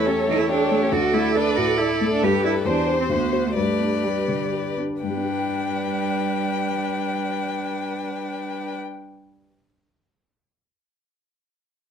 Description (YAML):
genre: quick classical-period movement for piano quintet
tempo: 120-141 BPM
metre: 3/4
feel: straight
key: G major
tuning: A4 = 440 Hz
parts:
  - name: warm violin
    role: melody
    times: 0.0-8.8 s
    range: F#4 to G5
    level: -28 LUFS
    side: left 7 dB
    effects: none
  - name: rich violin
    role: second line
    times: 0.0-8.8 s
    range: B4 to D5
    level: -29 LUFS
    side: left 4 dB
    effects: none
  - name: warm cello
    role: second line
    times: 0.0-8.8 s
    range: G3 to G4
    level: -26 LUFS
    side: right 7 dB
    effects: none
  - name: dark baby grand piano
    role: accompaniment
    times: 0.0-9.6 s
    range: D2 to G5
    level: -26 LUFS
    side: left 2 dB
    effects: none
  - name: warm viola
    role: accompaniment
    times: 0.0-8.8 s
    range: D4 to A4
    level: -29 LUFS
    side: right 3 dB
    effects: none
room: light reverb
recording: none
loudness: -20 LUFS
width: side -8 dB against mid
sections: 0.0-5.0 A section; 5.0-8.0 B section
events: slowing down 1.6-5.0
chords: 0.0 A7/E; 0.9 D; 2.2 G; 2.6 C/E; 3.1 D7; 3.6 G